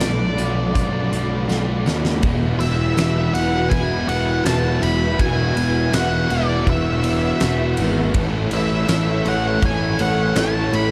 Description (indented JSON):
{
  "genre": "rock, shoegaze and dream pop",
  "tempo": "81 BPM",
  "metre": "4/4",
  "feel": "straight",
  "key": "unclear",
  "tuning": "A4 = 437 Hz",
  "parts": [
    { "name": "octave-fuzz lead guitar", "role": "melody", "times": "0.0-10.9 s", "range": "D5 to B5", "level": "-28 LUFS", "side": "equal", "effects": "distortion, analog delay" },
    { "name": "string machine, full ensemble", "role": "sustained chords", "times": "0.0-10.9 s", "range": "F#4 to C#6", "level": "-31 LUFS", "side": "equal", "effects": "ensemble chorus" },
    { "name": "crunchy overdriven guitar", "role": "riff", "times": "0.0-10.9 s", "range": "E2 to A4", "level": "-26 LUFS", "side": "equal", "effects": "reverse reverb" },
    { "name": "thick fuzz guitar", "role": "riff", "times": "0.0-10.9 s", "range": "E2 to F#4", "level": "-28 LUFS", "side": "equal", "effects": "distortion, analog chorus" },
    { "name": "fuzz picked electric bass", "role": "bass", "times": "0.0-10.9 s", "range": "E1 to D#2", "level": "-25 LUFS", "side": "equal", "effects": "overdrive" },
    { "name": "huge arena drum kit", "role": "drums", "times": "0.0-10.9 s", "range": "hi-hat, kick drum, ride cymbal, snare drum", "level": "-26 LUFS", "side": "equal", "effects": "none" },
    { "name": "tambourine", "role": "percussion", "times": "0.0-10.5 s", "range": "none", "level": "-41 LUFS", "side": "equal", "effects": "none" }
  ],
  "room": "light reverb, small room ambience",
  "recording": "none",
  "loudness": "-19 LUFS",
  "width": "mono",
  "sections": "0.0-2.2 A section; 2.2-10.9 B section",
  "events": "drum fill 1.5-2.2",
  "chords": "0.0 Bm7; 2.2 Esus2; 8.1 Aadd9"
}